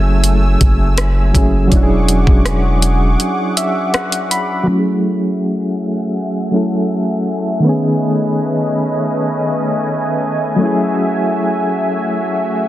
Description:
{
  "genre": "contemporary R&B",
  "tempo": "81 BPM",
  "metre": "4/4",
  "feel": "straight",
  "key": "F# minor",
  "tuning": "A4 = 440 Hz",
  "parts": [
    { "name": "soft electric-piano-like synth keys", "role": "accompaniment", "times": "0.0-12.7 s", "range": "D#3 to B5", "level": "-16 LUFS", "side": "equal", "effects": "chorus, tremolo, low-pass filter" },
    { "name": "lush unison pad", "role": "sustained chords", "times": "0.0-12.7 s", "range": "A3 to E6", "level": "-21 LUFS", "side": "equal", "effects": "chorus, low-pass filter" },
    { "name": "long sustained 808-style bass", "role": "bass", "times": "0.0-3.2 s", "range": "E1 to F#1", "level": "-14 LUFS", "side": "equal", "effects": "none" },
    { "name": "smooth R&B drum kit", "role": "drums", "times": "0.2-4.5 s", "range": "hi-hat, kick drum, rim click", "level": "-14 LUFS", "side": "equal", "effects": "none" }
  ],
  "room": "light reverb",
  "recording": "dense, heavily limited modern master",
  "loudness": "-13 LUFS",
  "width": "side -14 dB against mid",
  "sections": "0.0-4.7 A section; 4.7-12.7 B section",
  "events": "break 3.2-4.7; synth keys fill 3.2-4.7; filter sweep 4.7-12.7",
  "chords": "0.0 F#m9; 1.7 E13; 4.7 F#m9; 7.6 B13; 10.6 F#m9"
}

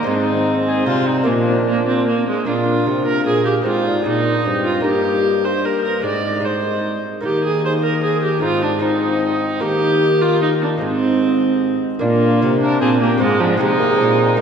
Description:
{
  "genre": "classical, renaissance-style consort dance",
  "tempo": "151 BPM",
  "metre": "3/4",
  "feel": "straight",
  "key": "unclear",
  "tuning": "A4 = 440 Hz",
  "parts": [
    { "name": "warm cornet", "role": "melody", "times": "0.0-14.4 s", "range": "D4 to F5", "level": "-27 LUFS", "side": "left 4 dB", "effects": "none" },
    { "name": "rich viola", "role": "second line", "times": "0.0-14.4 s", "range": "F3 to D5", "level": "-18 LUFS", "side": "right 2 dB", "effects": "none" },
    { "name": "lute", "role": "accompaniment", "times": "0.0-14.4 s", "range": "G2 to Ab4", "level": "-23 LUFS", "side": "right 1 dB", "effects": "none" },
    { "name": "mellow bassoon", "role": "accompaniment", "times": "0.1-14.4 s", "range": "F3 to D4", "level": "-25 LUFS", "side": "left 2 dB", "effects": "none" },
    { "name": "warm trombone", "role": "bass", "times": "0.1-14.4 s", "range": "G2 to Eb3", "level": "-23 LUFS", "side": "equal", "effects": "none" }
  ],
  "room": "wet church reverb, RT60 3.4 s",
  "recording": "none",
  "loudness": "-15 LUFS",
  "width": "side -7 dB against mid",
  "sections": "0.0-2.5 A section; 2.5-12.0 B section; 12.0-14.4 B section",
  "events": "none",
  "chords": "0.1 Ab; 1.3 Bb; 3.7 Ab; 4.8 Eb/G; 6.0 Ab; 7.2 Eb5; 8.4 Ab; 9.6 Eb; 10.8 Ab; 12.0 Bb; 13.2 Ab"
}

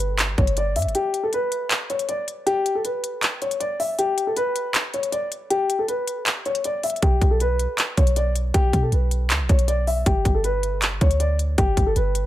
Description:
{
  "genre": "hip hop, trap",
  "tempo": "158 BPM",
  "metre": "4/4",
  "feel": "half-time",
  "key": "unclear",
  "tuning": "A4 = 439 Hz",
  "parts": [
    { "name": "dark concert grand piano", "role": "melody", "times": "0.0-12.3 s", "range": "G4 to E5", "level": "-24 LUFS", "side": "left 2 dB", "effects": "low-pass filter" },
    { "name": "clean 808-style bass", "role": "bass", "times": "0.0-0.9, 7.0-12.3 s", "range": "F#1 to B2", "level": "-22 LUFS", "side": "equal", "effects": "none" },
    { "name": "trap drum kit", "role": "drums", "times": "0.0-12.2 s", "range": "handclaps, hi-hat, kick drum", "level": "-22 LUFS", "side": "equal", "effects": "none" }
  ],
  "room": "digital ambience",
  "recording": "none",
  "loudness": "-20 LUFS",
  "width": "side -14 dB against mid",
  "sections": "0.0-12.3 A section",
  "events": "break 0.9-7.0",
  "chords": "0.0 N.C.; 10.1 G"
}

